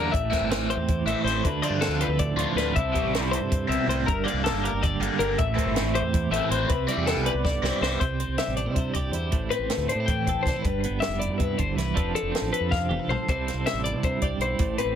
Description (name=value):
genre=math rock and midwest emo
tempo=319 BPM (eighths)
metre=7/8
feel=straight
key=C major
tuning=A4 = 440 Hz
part: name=twelve-string electric guitar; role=accompaniment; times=0.0-15.0 s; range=G2 to D5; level=-29 LUFS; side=right 8 dB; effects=tremolo
part: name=twelve-string electric guitar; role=arpeggios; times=0.0-15.0 s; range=A4 to G5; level=-28 LUFS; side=left 6 dB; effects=digital delay
part: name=raw garage guitar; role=riff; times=0.0-8.0 s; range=C3 to F4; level=-28 LUFS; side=left 1 dB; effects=overdrive, phaser
part: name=growling fingered electric bass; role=bass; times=0.0-14.9 s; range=F1 to C3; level=-30 LUFS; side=equal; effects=overdrive
part: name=compact cocktail drum kit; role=drums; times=0.1-14.9 s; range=hi-hat, kick drum, snare drum, toms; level=-28 LUFS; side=equal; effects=none
room=light reverb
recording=none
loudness=-23 LUFS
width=side -9 dB against mid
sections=0.0-8.0 A section; 8.0-15.0 B section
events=drum fill 7.4-8.0, 12.7-13.3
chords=0.1 Am7; 1.4 Dm7; 2.7 C6; 4.1 Gm; 5.4 Am7; 6.7 Cmaj7; 8.0 C6; 9.3 Am9; 10.6 G6; 12.0 F6; 13.3 Am9